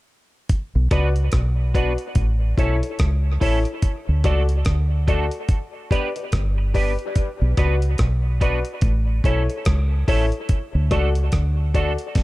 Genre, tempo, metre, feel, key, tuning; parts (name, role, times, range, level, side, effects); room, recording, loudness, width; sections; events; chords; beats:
dub reggae; 72 BPM; 4/4; swing 60% on 16ths; D major; A4 = 440 Hz
dusty soul sampler-style drum kit; drums; 0.5-12.2 s; hi-hat, kick drum, rim click, snare drum; -21 LUFS; equal
deep dub fingered electric bass; bass; 0.8-12.0 s; G1 to D2; -19 LUFS; equal
clean electric guitar; accompaniment; 0.9-11.9 s; A3 to B4; -30 LUFS; right 6 dB; analog chorus, dub echo
warm upright piano; stabs; 0.9-11.9 s; E4 to D5; -27 LUFS; left 4 dB; dub echo
digital ambience; echo-heavy mix; -18 LUFS; side -18 dB against mid
0.5-12.2 A section
0.5 Bm; 2.2 A; 3.8 D; 5.5 G; 7.2 Bm; 8.8 A; 10.5 D
| 0.49 1.33 2.16 2.99 | 3.83 4.66 5.49 6.33 | 7.16 7.99 8.83 9.66 | 10.49 11.33 12.16